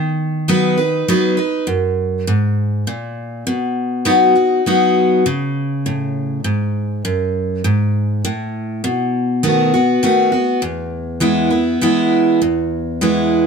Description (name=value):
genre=country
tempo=100 BPM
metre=3/4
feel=straight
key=E major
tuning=A4 = 441 Hz
part: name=picked steel-string acoustic guitar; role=solo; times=0.0-13.5 s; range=E2 to B4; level=-14 LUFS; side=equal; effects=none
room=light reverb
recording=close, detailed microphones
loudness=-14 LUFS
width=side -6 dB against mid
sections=0.0-12.4 A section; 12.4-13.5 B section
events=none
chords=0.0 B/D#; 1.7 F#; 3.5 B; 5.3 C#5; 7.0 F#madd9; 8.8 B7; 10.6 E